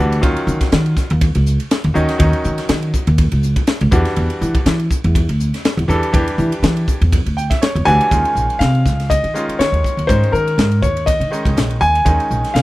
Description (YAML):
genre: electric jazz fusion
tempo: 122 BPM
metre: 4/4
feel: swing 54% on 16ths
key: unclear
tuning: A4 = 440 Hz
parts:
  - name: bright grand piano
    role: accompaniment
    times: 0.0-12.6 s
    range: Eb3 to G5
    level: -22 LUFS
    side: equal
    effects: none
  - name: upright bass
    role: bass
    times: 0.0-12.6 s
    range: Bb1 to E3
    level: -16 LUFS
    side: equal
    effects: none
  - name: crisp fusion drum kit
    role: drums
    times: 0.1-12.6 s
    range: hi-hat, kick drum, ride cymbal, snare drum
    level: -18 LUFS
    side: equal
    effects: none
  - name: clear grand piano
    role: melody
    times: 7.9-12.6 s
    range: Bb4 to Ab5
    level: -17 LUFS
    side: left 1 dB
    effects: none
room: little or no reverb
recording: none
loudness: -13 LUFS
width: side -18 dB against mid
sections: 0.0-8.1 A section; 8.1-12.6 B section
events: grand piano fill 7.1-8.1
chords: 0.2 Ebm9; 3.9 Em9; 8.1 Eb9sus4